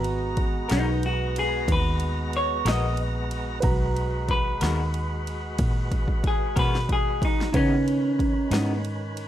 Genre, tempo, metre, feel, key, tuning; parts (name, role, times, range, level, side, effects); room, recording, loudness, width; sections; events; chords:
slow blues; 61 BPM (dotted quarters); 12/8; straight; G# minor; A4 = 440 Hz
semi-hollow electric guitar; melody; 0.0-8.8 s; C#4 to D#5; -26 LUFS; equal
dark grand piano; accompaniment; 0.0-9.3 s; B3 to A#5; -34 LUFS; right 5 dB; plate reverb
tonewheel organ; sustained chords; 0.0-9.3 s; D#3 to A#5; -34 LUFS; equal; slow rotary speaker, overdrive
vintage muted fingered electric bass; bass; 0.0-9.3 s; G#1 to C#3; -27 LUFS; equal
deep house drum kit; drums; 0.0-9.3 s; kick drum, ride cymbal, snare drum; -27 LUFS; equal
electric guitar through a small old amp; accompaniment; 0.7-8.7 s; C#3 to A#4; -33 LUFS; left 5 dB; tremolo, plate reverb
little or no reverb; -22 LUFS; side -12 dB against mid
0.0-9.3 A section
clean electric guitar solo 0.0-9.3; drum fill 5.6-7.5
0.0 G#m9; 7.5 C#m9